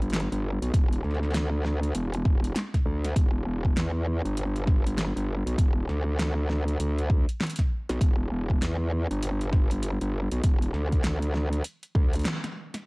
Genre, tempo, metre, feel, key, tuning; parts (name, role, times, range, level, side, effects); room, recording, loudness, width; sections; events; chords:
glitch hop; 99 BPM; 4/4; swing 61% on 16ths; E minor; A4 = 439 Hz
growl bass; bass; 0.0-12.3 s; E1 to E2; -27 LUFS; equal; chorus, tube saturation
pop drum kit; drums; 0.0-12.8 s; hi-hat, snare drum; -33 LUFS; equal; low-pass filter on snare, low-pass filter on hats
electronic kick drum; drums; 0.7-12.1 s; -23 LUFS; equal
digital ambience; dry, gritty hardware recording, cassette tape; -24 LUFS; side -31 dB against mid
0.0-12.9 A section
break 12.3-12.9; band accent 12.3-12.6